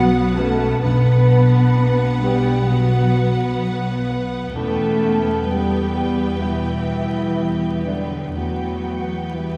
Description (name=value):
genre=cinematic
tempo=64 BPM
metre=4/4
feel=rubato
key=B minor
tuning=A4 = 440 Hz
part: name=rich symphonic violin section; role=melody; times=0.0-9.6 s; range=F#5 to G5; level=-35 LUFS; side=equal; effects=none
part: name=clear clarinet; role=second line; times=0.0-9.6 s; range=F#3 to D4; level=-29 LUFS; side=equal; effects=none
part: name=large flute ensemble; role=second line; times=0.0-9.6 s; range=D5 to B5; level=-34 LUFS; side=equal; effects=none
part: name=rich symphonic violin section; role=second line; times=0.0-9.6 s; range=B4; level=-36 LUFS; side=equal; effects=none
part: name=rich symphonic viola section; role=accompaniment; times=0.0-9.6 s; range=B3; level=-31 LUFS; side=equal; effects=none
part: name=warm baby grand piano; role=accompaniment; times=0.0-9.6 s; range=B1 to B4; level=-29 LUFS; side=equal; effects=none
part: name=dark French horn section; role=sustained chords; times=0.0-9.6 s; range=D4 to B4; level=-27 LUFS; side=equal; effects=none
part: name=concert harp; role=arpeggios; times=0.0-9.6 s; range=B2 to B4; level=-27 LUFS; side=equal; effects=none
part: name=clear symphonic double bass section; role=bass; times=0.0-9.6 s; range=B1 to E2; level=-24 LUFS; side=equal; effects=none
part: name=warm symphonic cello section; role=bass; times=0.0-9.6 s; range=D3 to B3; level=-28 LUFS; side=equal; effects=none
room=wet scoring stage reverb, RT60 1.8 s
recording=heard from further back in the room, vinyl crackle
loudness=-19 LUFS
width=mono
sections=0.0-9.6 A section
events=none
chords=0.0 Bm; 4.5 Em